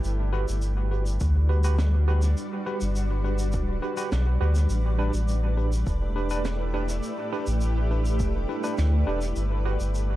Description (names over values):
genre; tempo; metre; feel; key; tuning
ambient dub; 103 BPM; 4/4; straight; unclear; A4 = 442 Hz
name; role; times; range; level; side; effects
granular cloud pad; sustained chords; 0.0-10.2 s; G3 to D5; -33 LUFS; equal; built-in reverb
warm sub bass; bass; 0.0-10.2 s; D1 to D2; -23 LUFS; equal; none
shaker and snare drum; drums; 0.0-10.1 s; none; -39 LUFS; right 2 dB; dub echo
tine electric piano; stabs; 0.3-9.8 s; D4 to B4; -33 LUFS; right 2 dB; overdrive, fast stereo tremolo, dub echo
electronic kick drum; drums; 1.2-8.3 s; none; -30 LUFS; equal; overdrive
room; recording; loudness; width
small room ambience; echo-heavy mix; -23 LUFS; side -15 dB against mid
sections
0.0-10.2 A section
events
none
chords
0.0 Gmaj7; 4.7 A9sus4; 9.4 Gmaj7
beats
| 0.04 0.62 1.21 1.79 | 2.37 2.96 3.54 4.12 | 4.70 5.29 5.87 6.45 | 7.03 7.62 8.20 8.78 | 9.36 9.95